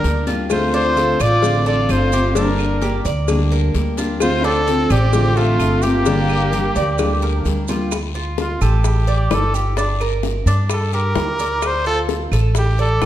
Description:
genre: latin, Cuban son and guajira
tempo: 129 BPM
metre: 4/4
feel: straight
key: D minor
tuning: A4 = 440 Hz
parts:
  - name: bright trumpet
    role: melody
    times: 0.0-13.1 s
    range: F4 to D5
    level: -21 LUFS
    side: equal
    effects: tape echo
  - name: warm chamber violin section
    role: second line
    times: 0.0-7.4 s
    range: A3 to F4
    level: -25 LUFS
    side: right 1 dB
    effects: none
  - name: picked steel-string acoustic guitar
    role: accompaniment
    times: 0.0-7.9 s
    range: D3 to G4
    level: -21 LUFS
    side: left 2 dB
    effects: none
  - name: Cuban tres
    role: arpeggios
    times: 0.0-13.1 s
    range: D4 to D5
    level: -24 LUFS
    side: right 2 dB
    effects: none
  - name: upright bass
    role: bass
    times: 0.0-13.1 s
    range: G1 to G2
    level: -19 LUFS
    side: equal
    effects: none
  - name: cowbell and bongos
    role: percussion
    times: 0.0-13.1 s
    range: none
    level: -26 LUFS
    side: left 6 dB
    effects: none
  - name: guiro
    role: percussion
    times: 0.0-13.1 s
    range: none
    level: -36 LUFS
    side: left 8 dB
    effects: none
  - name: claves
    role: percussion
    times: 0.5-13.1 s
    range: none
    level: -35 LUFS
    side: right 6 dB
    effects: none
  - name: maracas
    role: percussion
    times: 0.5-13.1 s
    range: none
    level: -36 LUFS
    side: right 8 dB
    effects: none
room: moderate recital hall reverb, RT60 1.2 s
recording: dark, warm production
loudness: -15 LUFS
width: side -12 dB against mid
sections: 0.0-7.9 A section; 7.9-13.1 B section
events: trumpet solo 7.9-13.1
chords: 0.0 Gm; 0.5 Dm7; 2.4 Gm; 4.2 Dm7; 6.1 Gm; 7.9 Dm; 9.8 Gm; 11.6 Dm

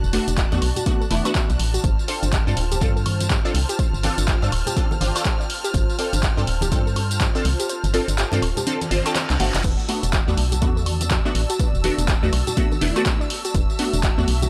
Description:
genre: deep house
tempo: 123 BPM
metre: 4/4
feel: swing 60% on 16ths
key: E phrygian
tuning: A4 = 444 Hz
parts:
  - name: hollow soft pad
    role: sustained chords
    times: 0.0-14.5 s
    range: F4 to A5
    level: -35 LUFS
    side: equal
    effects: ensemble chorus, sidechain pumping
  - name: organ-like FM bass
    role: bass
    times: 0.0-14.5 s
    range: D1 to G2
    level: -25 LUFS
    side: equal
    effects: tube saturation
  - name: punchy analog drum machine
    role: drums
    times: 0.0-14.5 s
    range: crash cymbal, handclaps, hi-hat, tambourine, woodblock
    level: -29 LUFS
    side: equal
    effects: none
  - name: congas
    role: percussion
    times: 0.0-14.5 s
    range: none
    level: -34 LUFS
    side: equal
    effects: none
  - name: dark studio violin section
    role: texture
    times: 0.0-14.5 s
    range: E6 to F#6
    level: -38 LUFS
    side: equal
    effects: sidechain pumping
  - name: filtered dub chord stab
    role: stabs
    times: 0.1-14.3 s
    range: A3 to C5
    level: -28 LUFS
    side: equal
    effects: phaser, ensemble chorus, cassette tape, sidechain pumping, analog delay
  - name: soft round pluck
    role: arpeggios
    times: 0.3-14.5 s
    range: D4 to F5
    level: -35 LUFS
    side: equal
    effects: chorus, sidechain pumping, analog delay
  - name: electronic kick drum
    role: drums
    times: 0.4-14.2 s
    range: none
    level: -24 LUFS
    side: equal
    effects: none
  - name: reverse cymbal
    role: sound effects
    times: 8.8-9.6 s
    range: none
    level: -35 LUFS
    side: equal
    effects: none
room: digital ambience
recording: dry, gritty hardware recording, transformer saturation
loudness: -21 LUFS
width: mono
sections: 0.0-14.5 A section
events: kick drops out 7.7-9.6; reverse cymbal 8.8-9.6; drum fill 9.3-9.6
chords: 0.0 E9sus4; 1.8 G9sus4; 9.6 E9sus4

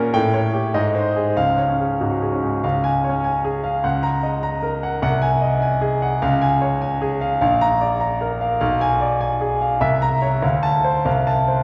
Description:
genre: classical, virtuoso piano study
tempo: 100 BPM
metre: 2/4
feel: rubato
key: Db major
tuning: A4 = 440 Hz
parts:
  - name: clear grand piano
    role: solo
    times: 0.0-11.6 s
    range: Bb1 to Bb5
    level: -20 LUFS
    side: equal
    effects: none
room: wet concert hall reverb, RT60 2.4 s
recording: recorded in a church or concert hall, nothing above 10.9 kHz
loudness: -20 LUFS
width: mono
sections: 0.0-2.6 A section; 2.6-11.6 B section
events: none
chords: 0.1 A7; 0.7 Ab; 1.4 Db; 3.8 Ebm7/Db; 5.0 Ab7/C; 6.2 Db; 7.4 Bb; 8.6 Bdim7; 9.8 C7b9; 10.4 Dm7; 11.1 F/C

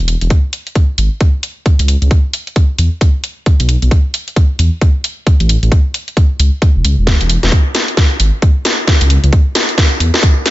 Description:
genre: UK garage, two-step garage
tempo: 133 BPM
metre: 4/4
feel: swing 60% on 16ths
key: E major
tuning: A4 = 439 Hz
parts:
  - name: dark detuned saw bass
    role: bass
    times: 0.0-10.1 s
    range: E1 to E2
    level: -12 LUFS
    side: equal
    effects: none
  - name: garage drum kit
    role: drums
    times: 0.1-10.5 s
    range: hi-hat, snare drum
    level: -16 LUFS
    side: equal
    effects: high-pass filter on hats, small room ambience, high-pass filter on snare
  - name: electronic kick drum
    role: drums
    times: 0.3-10.3 s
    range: none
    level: -10 LUFS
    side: equal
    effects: small room ambience
room: digital ambience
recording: nothing above 7.8 kHz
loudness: -10 LUFS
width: side -16 dB against mid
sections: 0.0-10.5 A section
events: build-up 0.0-10.5; drum fill 7.1-10.5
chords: none

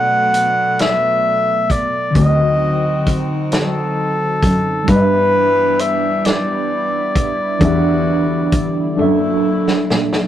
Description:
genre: slow six-eight R&B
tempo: 44 BPM (dotted quarters)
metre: 6/8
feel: straight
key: B minor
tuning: A4 = 439 Hz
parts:
  - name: warm flugelhorn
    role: melody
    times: 0.0-9.4 s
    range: A4 to F#5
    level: -17 LUFS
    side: equal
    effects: none
  - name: mellow tine electric piano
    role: accompaniment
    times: 0.0-10.3 s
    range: B2 to E5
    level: -18 LUFS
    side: equal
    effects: medium stereo tremolo
  - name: chorused pulse-width pad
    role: sustained chords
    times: 0.0-10.3 s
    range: A#2 to E4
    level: -27 LUFS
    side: equal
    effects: none
  - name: warm horn section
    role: stabs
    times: 0.0-9.9 s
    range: A#2 to G4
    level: -29 LUFS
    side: left 1 dB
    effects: none
  - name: warm cello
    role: bass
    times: 0.0-10.3 s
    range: D2 to B2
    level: -20 LUFS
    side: left 2 dB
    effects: none
  - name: warm soul drum kit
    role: drums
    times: 0.3-10.3 s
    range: hi-hat, kick drum, snare drum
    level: -18 LUFS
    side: equal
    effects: none
room: moderate studio reverb, RT60 0.6 s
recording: rough rehearsal-room recording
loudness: -13 LUFS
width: side -11 dB against mid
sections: 0.0-10.3 A section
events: drum fill 9.0-10.3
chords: 0.0 Bm7; 2.2 D7b9; 4.9 G6; 7.6 Em7; 9.0 F#7alt

